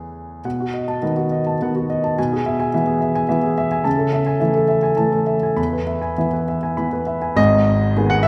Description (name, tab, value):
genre	neoclassical minimalist piano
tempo	98-109 BPM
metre	3/4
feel	rubato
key	E major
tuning	A4 = 440 Hz
part	warm grand piano	solo	0.0-8.3 s	G#1 to B5	-19 LUFS	equal	none
room	wet concert hall reverb, RT60 2.0 s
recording	recorded in a church or concert hall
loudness	-19 LUFS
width	mono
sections	0.4-7.4 A section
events	none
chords	0.4 B7; 2.2 E/B; 3.9 Amaj7/C#; 5.6 E; 7.4 G#m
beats	| 0.45 1.02 1.60 | 2.17 2.73 3.29 | 3.85 4.41 4.98 | 5.57 6.18 6.77 | 7.38 7.96